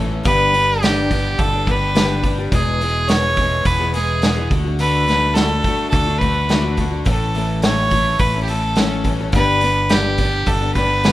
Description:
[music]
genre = folk rock and heartland rock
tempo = 106 BPM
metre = 4/4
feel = straight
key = unclear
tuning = A4 = 440 Hz
[part]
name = picked old ladder-braced acoustic guitar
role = accompaniment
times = 0.0-11.1 s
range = E2 to A4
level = -24 LUFS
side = left 4 dB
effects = none
[part]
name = crunchy overdriven guitar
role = riff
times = 0.0-11.1 s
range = E2 to A4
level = -29 LUFS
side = right 1 dB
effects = none
[part]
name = fingered electric bass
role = bass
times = 0.0-11.1 s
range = E1 to D2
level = -21 LUFS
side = equal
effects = none
[part]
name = clear fiddle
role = melody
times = 0.3-11.1 s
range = G4 to C#5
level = -19 LUFS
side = equal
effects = tape echo
[part]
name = vintage drum kit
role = drums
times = 0.3-11.1 s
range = hi-hat, kick drum, snare drum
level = -20 LUFS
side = right 1 dB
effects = none
[sound]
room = light reverb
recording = rough home demo mix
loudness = -15 LUFS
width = side -15 dB against mid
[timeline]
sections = 0.0-11.1 A section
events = none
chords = 0.3 G; 2.5 E; 4.5 D; 7.1 A; 9.3 G

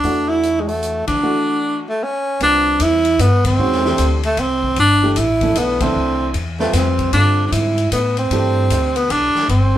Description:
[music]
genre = modal jazz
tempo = 152 BPM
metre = 3/4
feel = swing 64% on 8ths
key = C major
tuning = A4 = 440 Hz
[part]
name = breathy tenor saxophone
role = melody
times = 0.0-9.8 s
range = G#3 to E4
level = -16 LUFS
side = right 1 dB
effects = none
[part]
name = warm concert grand piano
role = accompaniment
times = 0.0-9.8 s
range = D3 to B4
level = -24 LUFS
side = right 2 dB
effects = none
[part]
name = upright bass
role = bass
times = 0.0-9.8 s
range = G1 to A2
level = -19 LUFS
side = left 1 dB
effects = none
[part]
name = swinging big-band drum kit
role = drums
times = 0.0-9.6 s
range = hi-hat, kick drum, ride cymbal, snare drum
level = -27 LUFS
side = left 3 dB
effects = none
[sound]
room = moderate studio ambience, RT60 0.5 s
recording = band playing live in one room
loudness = -14 LUFS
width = side -12 dB against mid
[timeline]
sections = 0.0-2.4 A section; 2.4-9.8 B section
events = band accent 1.0, 3.4, 5.7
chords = 0.0 E9sus4; 2.4 Cmaj9

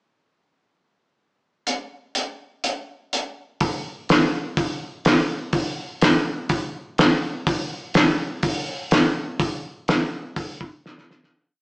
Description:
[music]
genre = rock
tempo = 124 BPM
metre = 4/4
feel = straight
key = none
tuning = none
[part]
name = cloth-damped thuddy drum kit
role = drums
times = 1.7-11.3 s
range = hi-hat, kick drum, snare drum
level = -19 LUFS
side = equal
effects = none
[sound]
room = moderate stone room reverb, RT60 1.0 s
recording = band playing live in one room, small speaker sound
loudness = -20 LUFS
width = side -34 dB against mid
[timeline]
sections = 1.7-3.6 pickup bar; 3.6-11.3 pre-chorus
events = fade-out 9.4-11.3; drum fill 10.9-11.3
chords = none

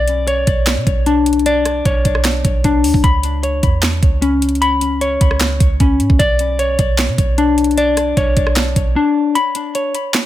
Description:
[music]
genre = hip hop, trap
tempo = 152 BPM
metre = 4/4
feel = half-time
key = unclear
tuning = A4 = 441 Hz
[part]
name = mellow electric guitar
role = arpeggios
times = 0.0-10.3 s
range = C#4 to B5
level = -16 LUFS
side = left 3 dB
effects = ping-pong delay
[part]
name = clean 808-style bass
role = bass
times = 0.0-9.0 s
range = B1 to B2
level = -18 LUFS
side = right 1 dB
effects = none
[part]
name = garage drum kit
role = drums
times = 0.1-10.2 s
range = handclaps, hi-hat, kick drum, rim click, snare drum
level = -16 LUFS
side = right 1 dB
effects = none
[sound]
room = digital ambience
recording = none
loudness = -12 LUFS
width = side -13 dB against mid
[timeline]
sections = 0.0-10.3 A section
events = drums muted 9.0-9.4; break 9.4-10.3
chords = 0.0 Bmadd9; 3.0 C#7(no3); 6.2 Bmadd9; 9.4 Bsus2

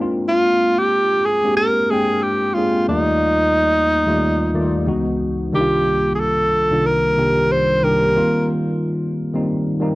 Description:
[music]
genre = R&B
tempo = 91 BPM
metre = 4/4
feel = swing 60% on 16ths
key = unclear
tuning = A4 = 441 Hz
[part]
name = tine electric piano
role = accompaniment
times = 0.0-9.9 s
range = C2 to G5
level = -20 LUFS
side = equal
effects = analog chorus, cassette tape
[part]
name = breathy tenor saxophone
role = melody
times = 0.3-8.5 s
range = Eb4 to C5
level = -17 LUFS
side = equal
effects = cassette tape
[sound]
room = moderate small room reverb, RT60 0.5 s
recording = home recording on cassette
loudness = -15 LUFS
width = side -20 dB against mid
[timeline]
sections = 0.0-9.9 A section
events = none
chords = 0.0 Bb7; 2.9 Ebmaj9#11; 4.9 Dbm11; 5.5 Cm11; 8.2 F7sus4

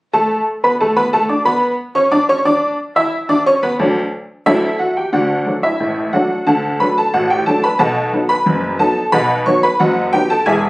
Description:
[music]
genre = ragtime piano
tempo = 90 BPM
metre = 2/4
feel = straight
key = D major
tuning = A4 = 436 Hz
[part]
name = honky-tonk upright piano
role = solo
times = 0.1-10.7 s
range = E1 to E6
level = -13 LUFS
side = equal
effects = none
[sound]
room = moderate studio reverb, RT60 0.6 s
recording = recorded on a phone in the room, studio reverb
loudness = -13 LUFS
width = side -21 dB against mid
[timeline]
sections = 0.0-5.1 A section; 5.1-10.7 B section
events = none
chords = 0.0 D; 7.8 B7

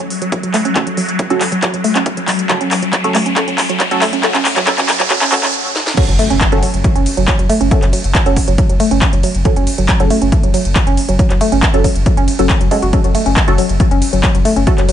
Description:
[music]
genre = driving peak-time techno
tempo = 138 BPM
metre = 4/4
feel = straight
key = F# minor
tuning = A4 = 440 Hz
[part]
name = woody wave-folded pluck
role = riff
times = 0.0-14.9 s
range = F#3 to F#4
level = -18 LUFS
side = right 1 dB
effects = chorus, tube saturation, sidechain pumping, tape echo
[part]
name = swarming drone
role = drone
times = 0.0-5.5 s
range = F#3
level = -23 LUFS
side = left 2 dB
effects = built-in reverb, sidechain pumping
[part]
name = techno drum kit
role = drums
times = 0.0-14.9 s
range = crash cymbal, handclaps, hi-hat, ride cymbal, snare drum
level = -18 LUFS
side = equal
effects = overdrive, small room reverb, sidechain pumping on hats, sidechain pumping on cymbals
[part]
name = riser and impact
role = sound effects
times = 1.0-7.7 s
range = none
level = -22 LUFS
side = equal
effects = none
[part]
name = electronic kick drum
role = drums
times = 0.3-14.8 s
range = none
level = -14 LUFS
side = equal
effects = overdrive, high-pass filter on kick, small room reverb
[part]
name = filtered dub chord stab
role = stabs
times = 0.8-14.8 s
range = C#4 to A4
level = -21 LUFS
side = right 2 dB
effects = phaser, analog chorus, sidechain pumping, tape echo
[part]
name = saturated sub bass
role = bass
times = 6.1-14.9 s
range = F#1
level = -17 LUFS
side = equal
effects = sidechain pumping, low-pass filter
[sound]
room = light reverb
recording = high-pass filter, nothing above 10.3 kHz, faint mains hum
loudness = -11 LUFS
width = side -10 dB against mid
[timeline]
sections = 0.0-6.0 A section; 6.0-14.9 B section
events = build-up 0.0-6.0; drum fill 0.0-5.5, 5.8; filter sweep on synth arpeggio sound 0.0-6.0; filter sweep 0.0-6.0; riser 1.0-5.5; stop 5.5-6.0; drop 6.0-14.9; impact 6.0-7.7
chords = 0.0 F#m

